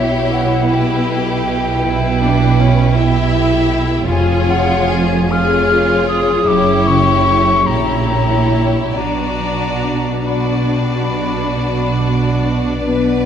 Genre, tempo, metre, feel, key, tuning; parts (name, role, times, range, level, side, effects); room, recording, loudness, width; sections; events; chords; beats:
classical, slow romantic movement for symphony orchestra; 46-54 BPM (dotted quarters); 12/8; rubato; B minor; A4 = 440 Hz
warm studio violin section; melody; 0.0-13.3 s; B4 to E5; -24 LUFS; left 5 dB
clear chamber violin section; second line; 0.0-13.3 s; E4 to B4; -25 LUFS; left 2 dB
silver concert flute; second line; 0.0-13.3 s; B4 to E#6; -20 LUFS; left 2 dB
clear symphonic viola section; accompaniment; 0.0-13.3 s; C#4 to E#4; -20 LUFS; right 1 dB
concert harp; arpeggios; 0.0-13.3 s; E#2 to A#4; -21 LUFS; left 5 dB
clear symphonic double bass section; bass; 0.0-13.3 s; E#1 to B1; -19 LUFS; right 4 dB
rich symphonic cello section; bass; 0.0-13.3 s; E#2 to B2; -21 LUFS; right 3 dB
dark French horn section; sustained chords; 12.9-13.3 s; B3; -16 LUFS; left 5 dB
moderate scoring stage reverb, RT60 1.8 s; -12 LUFS; side -8 dB against mid
0.0-13.3 A section
0.0 C#m7b5/B (rootless); 4.1 C#7/E#; 6.5 F#7b9; 9.0 Bm
0.69 1.84 2.96 | 4.09 5.32 6.48 7.68 | 8.96 10.27 11.56 12.85